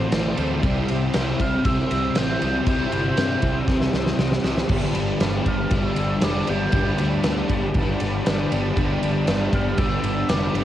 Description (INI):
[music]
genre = rock, shoegaze and dream pop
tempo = 118 BPM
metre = 4/4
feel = straight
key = G major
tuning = A4 = 443 Hz
[part]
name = sweeping resonant pad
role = sustained chords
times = 0.0-10.6 s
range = G4 to C6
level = -31 LUFS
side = right 2 dB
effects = chorus, cassette tape, plate reverb
[part]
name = crunchy overdriven guitar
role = riff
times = 0.0-10.6 s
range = G2 to E4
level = -25 LUFS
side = left 4 dB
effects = ensemble chorus, cassette tape
[part]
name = overdriven semi-hollow guitar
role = riff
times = 0.0-10.6 s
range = G2 to A4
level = -29 LUFS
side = right 8 dB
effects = reverse reverb, cassette tape
[part]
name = fingered electric bass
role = bass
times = 0.0-10.6 s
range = F1 to G2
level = -28 LUFS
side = equal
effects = none
[part]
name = huge arena drum kit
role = drums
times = 0.1-10.6 s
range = crash cymbal, kick drum, ride cymbal, snare drum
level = -24 LUFS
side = equal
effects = cassette tape
[part]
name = hollow clarinet-like synth lead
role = melody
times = 1.4-10.6 s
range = D6 to G6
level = -29 LUFS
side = right 2 dB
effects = chorus, plate reverb, analog delay
[part]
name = crunchy overdriven guitar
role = riff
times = 4.7-10.6 s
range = G2 to G3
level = -29 LUFS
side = right 2 dB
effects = none
[sound]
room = moderate booth ambience, RT60 0.2 s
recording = home recording on cassette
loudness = -19 LUFS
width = side -12 dB against mid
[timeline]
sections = 0.0-10.6 A section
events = drum fill 3.7-4.7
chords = 0.0 Am; 0.6 C; 4.7 Gadd9